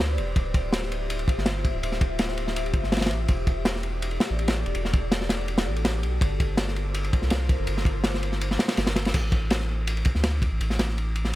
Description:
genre	drum and bass, jungle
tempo	164 BPM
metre	4/4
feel	straight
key	A minor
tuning	A4 = 440 Hz
part	ethereal airy pad	sustained chords	0.0-9.1 s	F4 to E5	-34 LUFS	left 2 dB	ensemble chorus, built-in reverb
part	soft dub sub bass	bass	0.0-11.4 s	D1 to D2	-27 LUFS	equal	none
part	crunchy breakbeat drum kit	drums	0.0-11.3 s	crash cymbal, kick drum, ride cymbal, snare drum	-25 LUFS	equal	none
room	small room ambience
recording	none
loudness	-23 LUFS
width	side -16 dB against mid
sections	0.0-9.1 A section; 9.1-11.4 A section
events	drop 0.0-9.1, 9.1-11.4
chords	0.4 Dm11; 3.3 Em11; 6.2 Gm11; 9.1 Asus4

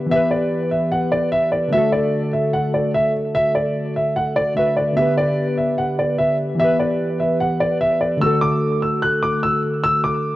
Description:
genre	hip hop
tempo	148 BPM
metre	4/4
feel	half-time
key	D major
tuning	A4 = 440 Hz
part	warbly lo-fi synth keys	accompaniment	0.0-10.4 s	D3 to B4	-21 LUFS	left 1 dB	chorus
part	dark concert grand piano	melody	0.1-10.4 s	D5 to F#6	-19 LUFS	equal	tape echo
room	small room ambience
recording	home recording on cassette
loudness	-17 LUFS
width	side -16 dB against mid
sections	0.0-8.2 A section; 8.2-10.4 B section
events	none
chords	0.1 Em; 1.7 D; 5.0 G; 6.6 Em; 8.2 D

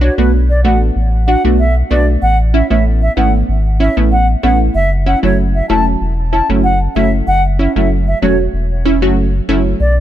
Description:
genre	dancehall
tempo	95 BPM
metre	4/4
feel	straight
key	F# minor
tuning	A4 = 440 Hz
part	wooden flute	melody	0.0-10.0 s	B4 to A5	-17 LUFS	equal	tape echo
part	analog pluck	accompaniment	0.0-9.6 s	F#3 to F#4	-16 LUFS	right 2 dB	chorus
part	warm sub bass	bass	0.0-10.0 s	E1 to B1	-14 LUFS	equal	none
room	small room ambience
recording	none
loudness	-11 LUFS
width	side -12 dB against mid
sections	0.0-9.8 A section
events	none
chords	0.0 Bm7; 2.2 Aadd9; 4.8 F#m7

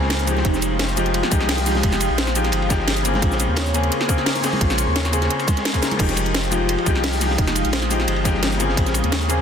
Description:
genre	liquid drum and bass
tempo	173 BPM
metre	4/4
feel	straight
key	F minor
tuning	A4 = 440 Hz
part	clear baby grand piano	accompaniment	0.0-9.4 s	Db3 to Ab4	-24 LUFS	left 3 dB	ping-pong delay
part	glassy FM pad	sustained chords	0.0-9.4 s	Ab3 to Eb6	-27 LUFS	left 1 dB	ensemble chorus, built-in reverb
part	saturated sub bass	bass	0.0-9.4 s	F1 to Eb2	-23 LUFS	equal	tube saturation
part	crunchy breakbeat drum kit	drums	0.0-9.4 s	hi-hat, ride cymbal, snare drum	-29 LUFS	equal	high-pass filter on cymbals, high-pass filter on hats, high-pass filter on snare, high-pass filter on room
part	harp-like synth pluck	arpeggios	0.1-9.4 s	Eb4 to Db5	-28 LUFS	right 1 dB	chorus, phaser, cassette tape, digital delay
part	drum and bass drum kit	drums	0.1-9.4 s	crash cymbal, hi-hat, shaker, snare drum	-25 LUFS	equal	overdrive
part	congas and bongos	percussion	0.4-6.0 s	none	-32 LUFS	right 2 dB	none
part	electronic kick drum	drums	0.5-8.8 s	none	-21 LUFS	equal	overdrive
room	light reverb, studio reverb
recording	dense, heavily limited modern master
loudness	-17 LUFS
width	side -7 dB against mid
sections	0.0-6.0 A section; 6.0-9.4 A section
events	drop 0.0-6.0, 6.0-9.4; drum fill 5.8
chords	0.4 Fm9; 3.2 Bbm9; 6.0 Fm9; 8.8 Bbm9

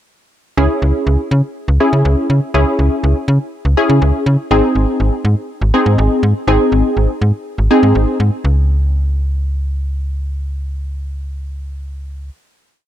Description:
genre	synth-pop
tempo	122 BPM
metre	4/4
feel	straight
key	C# harmonic minor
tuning	A4 = 440 Hz
part	funky polysynth comp	accompaniment	0.6-8.2 s	B#3 to G#4	-15 LUFS	equal	chorus
part	slap-like FM bass	bass	0.6-12.3 s	G#1 to C#3	-14 LUFS	equal	none
room	light reverb, digital ambience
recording	dark, warm production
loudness	-13 LUFS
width	side -11 dB against mid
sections	0.6-8.4 verse; 8.4-12.4 final note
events	none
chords	0.6 C#m; 4.5 G#; 8.4 N.C.

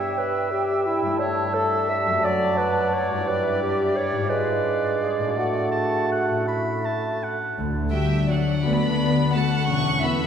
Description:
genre	classical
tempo	155-188 BPM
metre	3/4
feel	rubato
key	D major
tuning	A4 = 440 Hz
part	clear oboe	second line	0.0-7.6 s	D5 to B5	-28 LUFS	right 2 dB	none
part	mellow clarinet	second line	0.0-7.2 s	E4 to E5	-26 LUFS	right 1 dB	none
part	mellow hollow flute section	second line	0.0-7.4 s	E5 to A5	-31 LUFS	equal	none
part	warm bassoon	accompaniment	0.0-7.4 s	F#3 to A3	-28 LUFS	right 2 dB	none
part	concert harp	arpeggios	0.0-10.3 s	F#2 to B4	-27 LUFS	left 4 dB	none
part	dark chamber cello section	bass	7.6-10.0 s	D2 to E2	-29 LUFS	right 2 dB	none
part	warm chamber double bass section	bass	7.6-10.0 s	E1 to D2	-28 LUFS	equal	none
part	warm chamber violin section	melody	7.9-10.3 s	F#5 to C#6	-28 LUFS	left 1 dB	none
part	warm chamber violin section	second line	7.9-10.3 s	D5 to F#5	-28 LUFS	left 1 dB	none
part	dark chamber viola section	accompaniment	7.9-10.3 s	F#3 to C#4	-27 LUFS	right 1 dB	none
room	wet church reverb, RT60 3.1 s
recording	recorded in a church or concert hall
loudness	-20 LUFS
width	side -8 dB against mid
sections	0.0-7.6 A section; 7.6-10.3 B section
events	none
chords	0.0 Em/G; 1.2 A7/G; 2.2 D/F#; 3.3 Em7/G; 4.3 G#dim7; 5.4 D/A; 6.5 A; 7.6 D; 9.7 A/E

